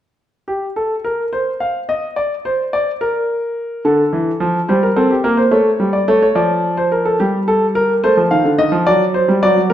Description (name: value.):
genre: classical, baroque-style two-part invention for grand piano.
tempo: 72 BPM (dotted quarters).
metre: 6/8.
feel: straight.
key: unclear.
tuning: A4 = 440 Hz.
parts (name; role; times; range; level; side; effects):
warm concert grand piano; solo; 0.5-9.7 s; D3 to F5; -13 LUFS; equal; none.
room: wet recital hall reverb, RT60 1.4 s.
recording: minimal, uncompressed stereo recording.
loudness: -14 LUFS.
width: side -11 dB against mid.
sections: 0.5-9.7 A section.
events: none.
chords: 0.5 N.C.; 3.8 Dm; 4.7 Gmadd11; 5.5 A; 6.4 Dm/F; 7.2 Gm; 8.0 Adim; 8.9 D/F#.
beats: | 0.47 1.32 | 2.17 3.00 | 3.84 4.68 | 5.52 6.36 | 7.20 8.03 | 8.87 9.70.